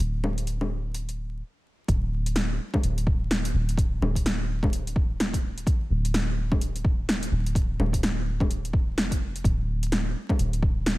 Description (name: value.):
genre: future garage.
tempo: 127 BPM.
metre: 4/4.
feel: swing 60% on 16ths.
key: D minor.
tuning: A4 = 441 Hz.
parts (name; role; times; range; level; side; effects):
soft 808-style bass; bass; 0.0-11.0 s; D1 to F1; -27 LUFS; equal; sidechain pumping.
deep house drum kit; drums; 0.0-11.0 s; bongos, hi-hat, snare drum; -28 LUFS; equal; overdrive.
electronic kick drum; drums; 1.9-10.7 s; none; -24 LUFS; equal; overdrive.
room: little or no reverb.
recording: vinyl crackle.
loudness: -24 LUFS.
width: side -19 dB against mid.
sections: 0.0-1.9 A section; 1.9-11.0 B section.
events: stop 1.4-1.9.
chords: none.